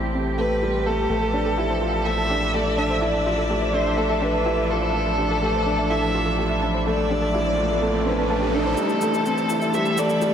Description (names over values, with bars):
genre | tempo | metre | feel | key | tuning
piano and strings electronica | 125 BPM | 4/4 | straight | unclear | A4 = 440 Hz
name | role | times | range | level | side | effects
muted string quartet | sustained chords | 0.0-10.3 s | A2 to E5 | -28 LUFS | left 1 dB | shimmer reverb
felt-muted upright piano | riff | 0.0-10.3 s | G3 to F4 | -25 LUFS | left 1 dB | low-pass filter, shimmer reverb, tape echo
round analog bass | bass | 0.0-8.8 s | A1 | -28 LUFS | equal | none
warm violin | melody | 0.4-10.3 s | A4 to E5 | -25 LUFS | equal | low-pass filter, shimmer reverb, tape echo
soft round pluck | arpeggios | 1.1-10.3 s | G4 to A5 | -31 LUFS | right 2 dB | chorus, shimmer reverb, tape echo
riser | sound effects | 6.4-10.3 s | none | -30 LUFS | right 3 dB | none
shaker | drums | 8.8-10.3 s | none | -38 LUFS | right 1 dB | overdrive, low-pass filter on perc
room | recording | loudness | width
wet huge ambient reverb, RT60 7.7 s | dreamy mix soaked in reverb | -20 LUFS | side -8 dB against mid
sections
0.0-8.8 A section; 8.8-10.3 B section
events
riser 6.4-8.8, 8.8-10.3; build-up 8.8-10.3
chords
0.0 Am7; 1.1 Dmadd9/A; 8.8 Am7